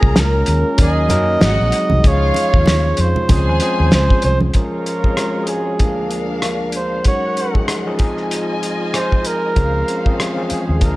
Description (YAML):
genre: lush 1970s-style soul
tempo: 96 BPM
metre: 4/4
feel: swing 58% on 16ths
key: Db major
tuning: A4 = 440 Hz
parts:
  - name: warm flugelhorn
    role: melody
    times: 0.0-11.0 s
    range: Ab4 to Eb5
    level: -20 LUFS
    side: right 2 dB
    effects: analog delay
  - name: dark studio string section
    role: second line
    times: 0.0-11.0 s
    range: Ab3 to Bb5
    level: -26 LUFS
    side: left 2 dB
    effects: none
  - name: overdriven tine electric piano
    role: accompaniment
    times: 0.0-11.0 s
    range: D2 to Bb4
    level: -22 LUFS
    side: left 1 dB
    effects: none
  - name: dark French horn section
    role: sustained chords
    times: 0.0-4.5 s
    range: Eb3 to C5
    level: -28 LUFS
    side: equal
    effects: none
  - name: vintage muted fingered electric bass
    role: bass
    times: 0.0-4.5, 9.6-11.0 s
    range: Ab1 to Gb2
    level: -17 LUFS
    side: equal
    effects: none
  - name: cloth-damped thuddy drum kit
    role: drums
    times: 0.0-11.0 s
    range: hi-hat, kick drum, rim click, snare drum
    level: -17 LUFS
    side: equal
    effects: none
  - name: congas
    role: percussion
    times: 0.2-4.5 s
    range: none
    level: -23 LUFS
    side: right 2 dB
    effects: none
room: light reverb, small room ambience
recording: none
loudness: -14 LUFS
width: side -18 dB against mid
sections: 0.0-4.5 A section; 4.5-11.0 B section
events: none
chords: 0.0 Bbm7; 0.8 Ebm7; 1.4 Ab7; 2.0 Db; 3.3 Dbmaj7; 5.8 Bb7/D; 7.1 Ebm11; 8.0 Fm7; 9.6 Dbmaj7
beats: 0.17 0.79 1.42 | 2.04 2.67 3.30 3.92 | 4.55 5.18 5.80 6.43 | 7.06 7.68 8.31 8.94 | 9.56 10.19 10.82